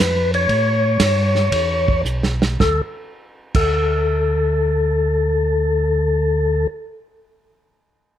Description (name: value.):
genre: soul jazz organ trio.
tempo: 107-122 BPM.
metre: 4/4.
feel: swing 69% on 8ths.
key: D harmonic minor.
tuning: A4 = 443 Hz.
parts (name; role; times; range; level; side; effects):
percussive tonewheel organ; melody; 0.0-6.7 s; A4 to C#5; -19 LUFS; left 3 dB; slow rotary speaker, plate reverb.
mellow tonewheel organ; bass; 0.0-6.7 s; B1 to A2; -20 LUFS; right 1 dB; chorus vibrato, slow rotary speaker.
warm soul drum kit; drums; 0.3-3.6 s; crash cymbal, hi-hat, kick drum, ride cymbal, snare drum; -21 LUFS; right 3 dB; none.
room: light reverb.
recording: none.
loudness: -16 LUFS.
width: side -11 dB against mid.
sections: 0.0-2.6 A section; 2.6-7.1 B section.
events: slowing down 0.0-2.6; drum fill 2.0-2.6.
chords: 0.5 A9; 2.6 D5.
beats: | 0.48 0.99 1.51 2.04 | 2.60 3.16 3.72 4.28 | 4.84 5.40 5.96 6.52.